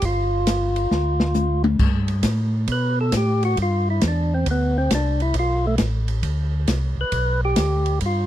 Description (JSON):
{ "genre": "soul jazz organ trio", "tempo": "135 BPM", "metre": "4/4", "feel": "swing 66% on 8ths", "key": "G mixolydian", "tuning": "A4 = 440 Hz", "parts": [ { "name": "percussive tonewheel organ", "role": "melody", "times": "0.0-8.3 s", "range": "A3 to B4", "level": "-23 LUFS", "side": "equal", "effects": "slow rotary speaker, overdrive" }, { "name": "mellow tonewheel organ", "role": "bass", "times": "0.0-8.3 s", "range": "G1 to B2", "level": "-22 LUFS", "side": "equal", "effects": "slow rotary speaker" }, { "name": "open jazz drum kit", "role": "drums", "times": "0.0-8.2 s", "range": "crash cymbal, hi-hat, kick drum, ride cymbal, snare drum, toms", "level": "-25 LUFS", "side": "equal", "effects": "none" } ], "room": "little or no reverb", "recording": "dry, close 1970s-style studio recording", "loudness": "-18 LUFS", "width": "side -12 dB against mid", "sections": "0.0-1.8 A section; 1.8-8.3 B section", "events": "drum fill 0.9-1.8; tonewheel organ solo 1.8-8.3", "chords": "0.0 G5; 1.8 G9" }